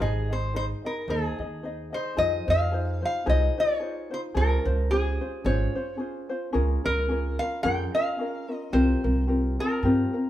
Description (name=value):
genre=Hawaiian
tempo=110 BPM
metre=4/4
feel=swing 56% on 8ths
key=F minor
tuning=A4 = 440 Hz
part: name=lap resonator guitar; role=melody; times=0.0-10.3 s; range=Ab4 to G5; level=-28 LUFS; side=left 1 dB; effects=none
part: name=ukulele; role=accompaniment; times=0.0-10.3 s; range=C4 to Eb5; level=-28 LUFS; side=left 1 dB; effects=none
part: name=upright bass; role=bass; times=0.0-10.0 s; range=Ab1 to G2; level=-26 LUFS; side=right 1 dB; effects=none
room=moderate large studio reverb, RT60 0.9 s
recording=band playing live in one room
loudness=-24 LUFS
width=side -13 dB against mid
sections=0.0-2.2 A section; 2.2-10.3 B section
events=none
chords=0.0 Ab; 2.2 Fm7; 4.4 Dbmaj7; 6.5 Bbm7/Db; 8.7 C7sus4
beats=0.54 1.08 1.63 | 2.17 2.72 3.27 3.81 | 4.36 4.90 5.45 6.00 | 6.54 7.09 7.63 8.18 | 8.73 9.28 9.82